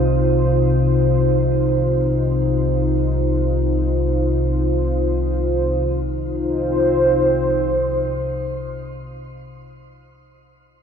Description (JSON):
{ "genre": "dark ambient drone", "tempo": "free time", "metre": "none", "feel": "none", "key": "C minor", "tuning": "A4 = 440 Hz", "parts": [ { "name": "dark analog pad", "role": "sustained chords", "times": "0.0-9.4 s", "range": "Eb4 to C5", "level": "-20 LUFS", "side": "right 1 dB", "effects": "chorus, shimmer reverb" }, { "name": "deep rumbling drone", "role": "drone", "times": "0.0-9.0 s", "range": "C2 to C3", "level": "-20 LUFS", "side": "left 1 dB", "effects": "built-in reverb" } ], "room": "wet plate reverb, RT60 3.4 s", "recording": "none", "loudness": "-16 LUFS", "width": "side -7 dB against mid", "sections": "0.0-5.9 A section; 5.9-9.8 B section", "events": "none", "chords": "0.0 Cm", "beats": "free time" }